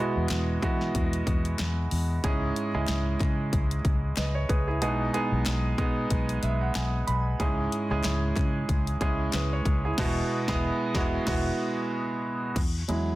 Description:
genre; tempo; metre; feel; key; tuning
piano-driven pop; 93 BPM; 4/4; swing 56% on 16ths; C# minor; A4 = 440 Hz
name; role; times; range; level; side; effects
clear concert grand piano; accompaniment; 0.0-13.2 s; G#2 to B5; -28 LUFS; right 2 dB; none
vintage muted fingered electric bass; bass; 0.2-13.2 s; E1 to E3; -29 LUFS; left 1 dB; none
house drum kit; drums; 0.3-13.1 s; crash cymbal, hi-hat, kick drum, snare drum; -30 LUFS; left 1 dB; none
group handclap; percussion; 0.3-9.5 s; none; -42 LUFS; left 6 dB; none
room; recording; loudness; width
light reverb, digital ambience; dense, heavily limited modern master; -25 LUFS; side -17 dB against mid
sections
0.0-12.6 A section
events
grand piano fill 6.1-7.4, 11.6-12.6; band accent 10.0-12.6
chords
0.0 Eadd9; 2.2 C#m; 4.8 G#m/B; 7.4 C#m; 10.0 Eadd9

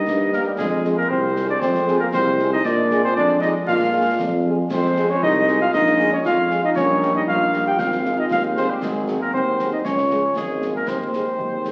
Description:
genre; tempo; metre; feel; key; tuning
military-style march for wind band; 117 BPM; 2/4; straight; Ab major from 4.7 s; A4 = 440 Hz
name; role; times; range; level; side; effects
mellow cornet; melody; 0.0-11.7 s; G4 to G5; -24 LUFS; equal; none
warm euphonium; second line; 0.0-11.7 s; G3 to G4; -25 LUFS; equal; none
clear trombone section; sustained chords; 0.0-11.7 s; Eb3 to Eb4; -34 LUFS; equal; none
warm tuba; bass; 0.1-11.7 s; Ab1 to Bb2; -26 LUFS; equal; none
concert snare drum, concert bass drum and clash cymbals; drums; 0.1-11.7 s; none; -36 LUFS; equal; none
mellow French horn section; accompaniment; 0.3-11.7 s; Ab3 to Ab4; -31 LUFS; equal; none
room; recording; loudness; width
wet scoring stage reverb, RT60 1.5 s; very old 78 rpm record, vinyl crackle; -20 LUFS; mono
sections
0.0-11.7 A section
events
none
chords
0.0 Eb/G; 0.6 Fm; 2.7 Bb7; 4.7 Fm; 5.7 Bbm7; 6.8 Eb/Bb; 7.8 Ab; 8.8 Ab7; 9.9 Db; 10.9 Ab/Eb

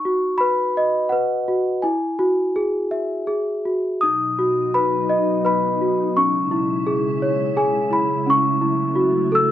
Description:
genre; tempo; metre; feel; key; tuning
children's music, lullaby; 85 BPM; 3/4; rubato; unclear; A4 = 439 Hz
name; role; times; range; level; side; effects
celesta; melody; 0.0-9.5 s; C#4 to E6; -18 LUFS; equal; none
glassy FM pad; sustained chords; 4.0-9.5 s; B2 to E4; -25 LUFS; equal; ensemble chorus, built-in reverb
room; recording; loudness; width
light reverb; none; -18 LUFS; side -11 dB against mid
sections
0.0-4.0 A section; 4.0-9.5 B section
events
none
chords
0.0 B; 1.8 Eadd9; 4.0 B; 6.2 C#m; 8.3 F#m7/C#

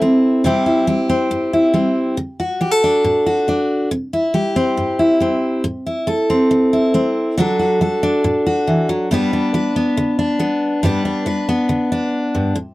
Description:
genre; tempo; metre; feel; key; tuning
country; 139 BPM; 4/4; straight; G major; A4 = 439 Hz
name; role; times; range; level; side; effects
picked steel-string acoustic guitar; solo; 0.0-12.7 s; G2 to B4; -15 LUFS; equal; none
room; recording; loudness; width
light reverb; dry, close 1970s-style studio recording; -15 LUFS; side -18 dB against mid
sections
0.0-10.8 A section; 10.8-12.7 B section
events
none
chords
0.4 C; 2.2 D; 3.9 C; 5.6 Am; 7.4 D; 9.1 G

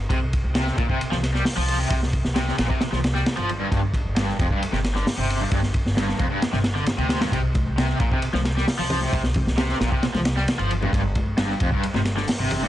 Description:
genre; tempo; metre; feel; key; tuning
breakbeat, breaks; 133 BPM; 4/4; straight; unclear; A4 = 440 Hz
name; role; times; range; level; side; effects
upright bass; bass; 0.0-12.7 s; F1 to D2; -26 LUFS; equal; none
cranked stack guitar; riff; 0.1-12.7 s; F2 to G3; -26 LUFS; equal; overdrive, tremolo, analog delay
crunchy breakbeat drum kit; drums; 0.1-12.6 s; hi-hat, kick drum, ride cymbal, snare drum; -24 LUFS; equal; none
congas; percussion; 7.5-12.7 s; none; -31 LUFS; left 2 dB; none
room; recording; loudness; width
small room reverb; dry, gritty hardware recording, transformer saturation, nothing above 10.9 kHz; -20 LUFS; side -13 dB against mid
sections
0.0-12.7 A section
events
none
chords
0.1 Csus4; 3.5 Gsus4; 7.3 Csus4; 10.7 N.C.

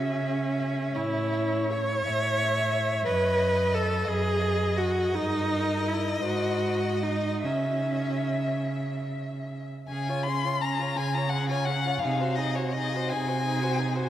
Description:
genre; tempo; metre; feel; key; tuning
classical, slow romantic movement for string quartet; 47-61 BPM (dotted quarters); 6/8; rubato; C# minor, Db major from 9.9 s; A4 = 439 Hz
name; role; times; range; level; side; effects
rich violin; second line; 0.0-14.1 s; Ab4 to E5; -32 LUFS; left 2 dB; none
clear viola; accompaniment; 0.0-14.1 s; Db4 to C#5; -29 LUFS; equal; none
rich cello; bass; 0.0-14.0 s; F#2 to Db3; -30 LUFS; right 2 dB; none
rich violin; melody; 0.3-14.1 s; A#4 to C6; -34 LUFS; left 6 dB; none
room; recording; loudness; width
wet cathedral reverb, RT60 4.9 s; in a vast, echoing space; -25 LUFS; side -12 dB against mid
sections
0.0-9.9 A section; 9.9-14.1 B section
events
none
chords
0.0 C#m; 1.0 A; 3.1 F#m69; 5.1 D#/G; 6.2 G#7; 7.5 C#m; 9.9 Db; 12.0 Ab7/C

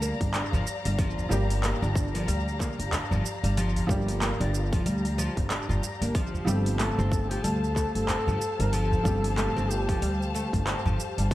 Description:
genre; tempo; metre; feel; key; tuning
organic downtempo; 93 BPM; 4/4; swing 59% on 16ths; G minor; A4 = 440 Hz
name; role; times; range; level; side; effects
felt-muted upright piano; accompaniment; 0.0-11.3 s; F3 to G4; -36 LUFS; right 1 dB; sidechain pumping, tape echo
dark studio string section; sustained chords; 0.0-11.3 s; G4 to Bb5; -36 LUFS; left 3 dB; sidechain pumping
oud; arpeggios; 0.0-11.3 s; F3 to F4; -32 LUFS; equal; dub echo
upright bass; bass; 0.0-11.3 s; G1 to D2; -28 LUFS; equal; tube saturation, sidechain pumping
deep house drum kit; drums; 0.0-11.3 s; handclaps, hi-hat, shaker; -34 LUFS; right 1 dB; overdrive, studio reverb
electronic kick drum; drums; 0.2-11.3 s; none; -29 LUFS; equal; overdrive, studio reverb
udu; percussion; 0.5-11.0 s; none; -31 LUFS; right 1 dB; none
warm duduk; melody; 6.8-10.3 s; G4 to Bb4; -32 LUFS; left 1 dB; tape echo
room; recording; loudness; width
light reverb, small room reverb; echo-heavy mix; -24 LUFS; side -15 dB against mid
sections
0.0-11.3 A section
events
none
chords
0.0 Gm7; 6.1 Fadd9/G

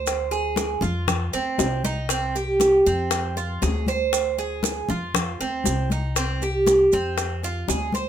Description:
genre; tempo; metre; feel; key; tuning
latin, Cuban son and guajira; 118 BPM; 4/4; straight; unclear; A4 = 440 Hz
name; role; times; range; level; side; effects
Cuban tres; arpeggios; 0.0-8.1 s; C4 to C5; -23 LUFS; right 2 dB; none
upright bass; bass; 0.0-8.1 s; C2 to F2; -28 LUFS; left 1 dB; none
bongos; percussion; 0.1-8.1 s; none; -28 LUFS; left 7 dB; none
congas; percussion; 0.1-8.1 s; none; -29 LUFS; left 1 dB; none
maracas; percussion; 0.1-8.1 s; none; -30 LUFS; right 8 dB; none
room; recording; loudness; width
light reverb; minimal, uncompressed stereo recording; -20 LUFS; side -10 dB against mid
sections
0.0-8.1 A section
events
none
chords
0.0 Dm7b5; 1.1 F5; 2.1 C5; 3.1 Dm7b5; 5.1 F5; 6.2 C5; 7.2 Dm7b5

